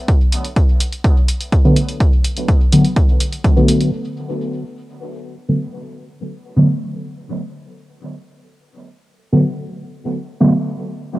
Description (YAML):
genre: dub techno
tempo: 125 BPM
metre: 4/4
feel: straight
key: B minor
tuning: A4 = 443 Hz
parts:
  - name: electronic hi-hat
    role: drums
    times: 0.1-3.9 s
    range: none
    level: -25 LUFS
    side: equal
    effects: low-pass filter on hats, cassette tape
  - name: electronic kick drum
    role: drums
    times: 0.1-3.5 s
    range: none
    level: -14 LUFS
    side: equal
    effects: cassette tape
  - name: deep mellow chord stab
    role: stabs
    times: 1.6-10.5 s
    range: D3 to B3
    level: -17 LUFS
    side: equal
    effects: chorus, phaser, cassette tape, sidechain pumping, dub echo
room: light reverb, digital ambience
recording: home recording on cassette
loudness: -14 LUFS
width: side -18 dB against mid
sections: 0.0-3.9 A section; 3.9-11.2 B section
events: none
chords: 0.0 Bm7